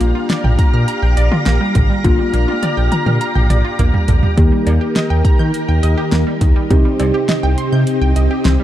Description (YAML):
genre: synth-pop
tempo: 103 BPM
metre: 4/4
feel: straight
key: Eb major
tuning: A4 = 445 Hz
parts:
  - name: muted felt-like synth keys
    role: accompaniment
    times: 0.0-8.6 s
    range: Bb3 to G4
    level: -22 LUFS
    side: left 2 dB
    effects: chorus
  - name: ensemble organ-string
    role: sustained chords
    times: 0.0-8.6 s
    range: C3 to Bb5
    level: -21 LUFS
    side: equal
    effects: ensemble chorus
  - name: wide unison pluck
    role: arpeggios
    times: 0.0-8.6 s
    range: D3 to G6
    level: -23 LUFS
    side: right 2 dB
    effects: slapback echo
  - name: smooth synth bass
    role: bass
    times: 0.0-8.6 s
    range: Bb1 to Eb3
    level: -15 LUFS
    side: equal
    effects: none
  - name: pop drum kit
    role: drums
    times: 0.0-8.6 s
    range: cowbell, hi-hat, kick drum, snare drum, toms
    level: -16 LUFS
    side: equal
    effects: none
room: light reverb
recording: dark, warm production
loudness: -12 LUFS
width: side -12 dB against mid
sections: 0.0-4.4 A section; 4.4-8.6 B section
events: drum fill 2.0-4.4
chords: 0.0 Bb6; 4.4 Eb; 6.7 Cm